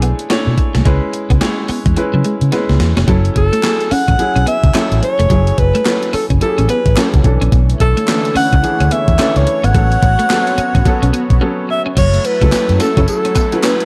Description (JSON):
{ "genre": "R&B, new jack swing", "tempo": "108 BPM", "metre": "4/4", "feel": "swing 61% on 16ths", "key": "F# minor", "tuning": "A4 = 440 Hz", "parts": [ { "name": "clear grand piano", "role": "accompaniment", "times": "0.0-13.8 s", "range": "E3 to C#5", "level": "-23 LUFS", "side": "equal", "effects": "none" }, { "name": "clean electric guitar", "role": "riff", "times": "0.0-13.7 s", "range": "F#3 to C#4", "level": "-24 LUFS", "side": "equal", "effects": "ensemble chorus" }, { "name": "vintage muted fingered electric bass", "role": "bass", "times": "0.0-13.0 s", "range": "E#1 to C#3", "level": "-17 LUFS", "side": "equal", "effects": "none" }, { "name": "gated 80s digital drum machine", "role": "drums", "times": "0.0-13.8 s", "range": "crash cymbal, handclaps, hi-hat, kick drum, snare drum, tambourine", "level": "-19 LUFS", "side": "equal", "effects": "gated reverb, gated reverb snare, overdrive" }, { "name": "breathy alto saxophone", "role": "melody", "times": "3.4-13.8 s", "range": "A4 to F#5", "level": "-19 LUFS", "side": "equal", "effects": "none" }, { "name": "group handclap", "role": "percussion", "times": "3.6-13.8 s", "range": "none", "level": "-30 LUFS", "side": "equal", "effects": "none" }, { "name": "warm analog pad", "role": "sustained chords", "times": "7.5-13.8 s", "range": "D3 to C#5", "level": "-26 LUFS", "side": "equal", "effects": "chorus, tremolo" } ], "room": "digital ambience", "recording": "dark, warm production", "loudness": "-14 LUFS", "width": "mono", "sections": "0.0-3.1 A section; 3.1-12.0 B section; 12.0-13.8 C section", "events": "drum fill 2.5-3.1; break 11.4-12.0", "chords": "0.0 Bm11; 0.9 C#m7; 3.1 F#m7; 7.2 Bm11; 9.7 A69; 12.0 F#m7" }